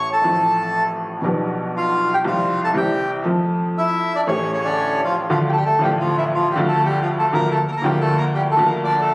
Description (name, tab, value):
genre	tango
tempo	119 BPM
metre	4/4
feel	rubato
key	F major, D minor from 5.3 s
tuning	A4 = 440 Hz
part	bandoneon	melody	0.0-9.1 s	C#3 to A5	-18 LUFS	equal	plate reverb
part	clear upright piano	accompaniment	0.0-9.1 s	A1 to C#5	-20 LUFS	equal	none
room	moderate studio reverb, RT60 0.6 s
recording	recorded on a phone in the room, club reverb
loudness	-16 LUFS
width	side -25 dB against mid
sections	0.0-5.3 A section; 5.3-9.1 B section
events	none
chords	0.2 F/A; 1.2 G7/B; 2.2 Csus4; 2.7 C; 3.3 F; 4.3 A7; 5.3 Dm; 7.3 Bb/D